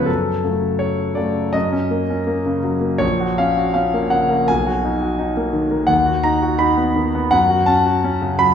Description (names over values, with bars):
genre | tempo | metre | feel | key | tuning
classical, romantic character piece for solo piano | 83 BPM | 2/4 | rubato | F# major | A4 = 440 Hz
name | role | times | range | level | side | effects
warm concert grand piano | solo | 0.0-8.5 s | A#1 to B5 | -16 LUFS | equal | none
room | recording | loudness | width
wet recital hall reverb, RT60 1.3 s | recorded in a church or concert hall | -16 LUFS | side -8 dB against mid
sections
0.0-1.5 A section; 1.5-8.5 B section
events
none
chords
0.1 F#m; 1.5 F#; 3.0 F#/A#; 4.5 Bmaj7; 5.9 B/D#; 7.3 F#m